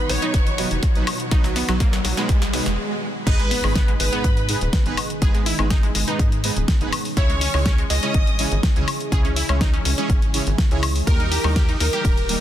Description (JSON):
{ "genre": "progressive house", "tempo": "123 BPM", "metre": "4/4", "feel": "straight", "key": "G# minor", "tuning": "A4 = 440 Hz", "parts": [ { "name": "plucky unison lead", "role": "melody", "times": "0.0-12.4 s", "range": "A#4 to D#5", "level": "-30 LUFS", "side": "equal", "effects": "lush chorus, ping-pong delay" }, { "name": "dark studio violin section", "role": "second line", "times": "0.0-12.4 s", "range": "A#5 to D#6", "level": "-33 LUFS", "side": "right 1 dB", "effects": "sidechain pumping, ping-pong delay" }, { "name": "shimmering ambient pad", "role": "sustained chords", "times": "0.0-12.4 s", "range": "A#2 to G#4", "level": "-32 LUFS", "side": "right 1 dB", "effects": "chorus, built-in reverb, phaser, sidechain pumping" }, { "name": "wide unison pluck", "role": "arpeggios", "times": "0.0-12.4 s", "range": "F#3 to A#4", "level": "-29 LUFS", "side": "equal", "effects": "sidechain pumping, ping-pong delay" }, { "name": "tight sequencer bass", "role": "bass", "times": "0.0-12.4 s", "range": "D#1 to G#2", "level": "-24 LUFS", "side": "equal", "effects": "sidechain pumping" }, { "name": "riser, swell and impact", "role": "sound effects", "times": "0.3-5.2 s", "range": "none", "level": "-30 LUFS", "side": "equal", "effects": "none" }, { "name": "deep house drum kit", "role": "drums", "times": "0.1-12.4 s", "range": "crash cymbal, hi-hat, ride cymbal, snare drum, woodblock", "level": "-26 LUFS", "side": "left 2 dB", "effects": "high-pass filter on snare, sidechain pumping on hats, high-pass filter on hats, sidechain pumping on perc, high-pass filter on perc, sidechain pumping on cymbals, high-pass filter on cymbals, high-pass filter on room" }, { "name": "soft supersaw", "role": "stabs", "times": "0.2-12.4 s", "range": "G#2 to C#5", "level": "-29 LUFS", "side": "right 3 dB", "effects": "analog chorus, cassette tape, sidechain pumping, ping-pong delay" }, { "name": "electronic kick drum", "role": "drums", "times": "0.3-12.1 s", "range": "none", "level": "-19 LUFS", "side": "equal", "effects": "none" } ], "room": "little or no reverb", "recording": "dense, heavily limited modern master", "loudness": "-18 LUFS", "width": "side -11 dB against mid", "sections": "0.0-3.3 A section; 3.3-12.4 B section", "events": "build-up 0.0-3.3; drum fill 0.0-2.8; filter sweep on supersaw synth 0.0-3.3; riser 0.3-2.8; swell 2.3-3.3; stop 2.8-3.3; drop 3.3-12.4; impact 3.3-5.2", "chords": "0.0 B; 3.3 G#m; 7.2 C#m; 11.1 D#" }